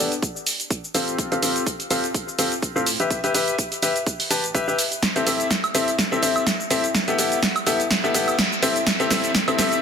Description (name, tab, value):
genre	piano house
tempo	125 BPM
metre	4/4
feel	swing 55% on 16ths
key	A minor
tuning	A4 = 440 Hz
part	bright grand piano	riff	0.0-9.8 s	B3 to A5	-22 LUFS	left 2 dB	sidechain pumping, low-pass filter, ping-pong delay
part	organ-like FM bass	bass	0.0-9.8 s	A1 to A2	-40 LUFS	right 1 dB	none
part	punchy analog drum machine	drums	0.1-9.8 s	cabasa, hi-hat, snare drum, woodblock	-22 LUFS	right 1 dB	none
part	electronic kick drum	drums	0.2-9.5 s	none	-28 LUFS	right 1 dB	high-pass filter on kick
room	moderate plate reverb, RT60 2.2 s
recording	dense, heavily limited modern master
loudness	-19 LUFS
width	side -7 dB against mid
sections	0.0-9.8 A section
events	build-up 0.0-9.8; filter sweep on grand piano 0.0-9.8; drum fill 5.0-9.8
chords	0.0 Gadd9/A; 0.9 Fadd9/A; 3.1 Em/A; 5.0 Am7; 6.9 Gadd9/A; 8.6 Am7